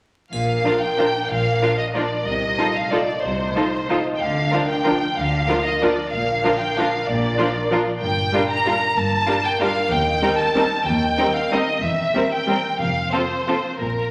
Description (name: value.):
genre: classical, orchestral ballroom waltz.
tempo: 167-204 BPM.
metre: 3/4.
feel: rubato.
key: Bb major.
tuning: A4 = 440 Hz.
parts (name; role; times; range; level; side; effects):
rich studio violin section; melody; 0.3-14.1 s; Bb4 to Bb5; -25 LUFS; equal; none.
concert harp; arpeggios; 0.3-14.1 s; G2 to F5; -28 LUFS; equal; none.
warm studio cello section; bass; 0.3-14.1 s; Eb2 to D3; -33 LUFS; equal; none.
warm studio double bass section; bass; 0.3-14.1 s; E1 to Eb2; -31 LUFS; equal; none.
triangle; percussion; 0.3-0.9 s; none; -41 LUFS; equal; none.
warm studio viola section; accompaniment; 0.6-13.6 s; F3 to Eb4; -28 LUFS; equal; none.
warm studio violin section; second line; 0.7-13.6 s; C4 to Bb4; -28 LUFS; equal; none.
room: wet recital hall reverb, RT60 1.5 s.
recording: vinyl crackle.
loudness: -20 LUFS.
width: mono.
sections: 0.3-14.1 A section.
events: none.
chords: 0.3 Bb; 2.3 F7/C; 4.2 Bb/D; 6.1 Bb; 8.0 Gm7; 9.9 Cm7/Eb; 11.8 C7/E; 12.8 F.